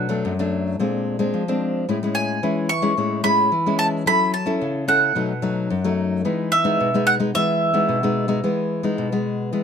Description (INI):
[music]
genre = samba and choro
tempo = 110 BPM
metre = 4/4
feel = straight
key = E major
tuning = A4 = 440 Hz
[part]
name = bowl-back mandolin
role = melody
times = 0.0-9.6 s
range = E5 to C#6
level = -20 LUFS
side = right 2 dB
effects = none
[part]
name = nylon-string guitar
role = accompaniment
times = 0.0-9.6 s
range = F#2 to A4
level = -21 LUFS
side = left 2 dB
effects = none
[sound]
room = light reverb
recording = close, detailed microphones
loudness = -18 LUFS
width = side -7 dB against mid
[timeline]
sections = 0.0-9.6 A section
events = none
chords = 0.0 Bm7; 0.8 A#9; 1.9 Amaj7; 4.1 F#m7; 5.2 B7; 6.3 Emaj7